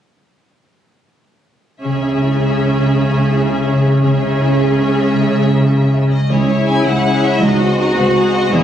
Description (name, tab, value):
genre	classical, dramatic, fast romantic movement for symphony orchestra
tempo	109 BPM (dotted quarters)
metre	6/8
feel	rubato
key	C# minor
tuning	A4 = 435 Hz
part	rich symphonic violin section	melody	1.8-8.6 s	C#5 to G#5	-24 LUFS	left 3 dB	none
part	rich symphonic violin section	second line	1.8-8.6 s	C#4 to C#5	-23 LUFS	left 2 dB	none
part	rich symphonic viola section	accompaniment	1.8-8.6 s	C#4 to F#4	-20 LUFS	right 2 dB	none
part	concert harp	arpeggios	1.8-8.6 s	E2 to C#5	-19 LUFS	left 4 dB	none
part	rich symphonic cello section	bass	1.8-8.6 s	C#2 to C#3	-16 LUFS	right 2 dB	none
part	warm symphonic double bass section	bass	1.8-8.6 s	E1 to C#2	-21 LUFS	right 3 dB	none
part	mellow French horn section	sustained chords	6.3-8.6 s	G#3 to E4	-20 LUFS	left 1 dB	none
room	moderate scoring stage reverb, RT60 1.9 s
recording	recorded on a phone in the room, club reverb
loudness	-12 LUFS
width	side -10 dB against mid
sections	1.8-6.3 A section; 6.3-8.6 B section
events	none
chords	1.8 C#m; 7.4 G#7/C#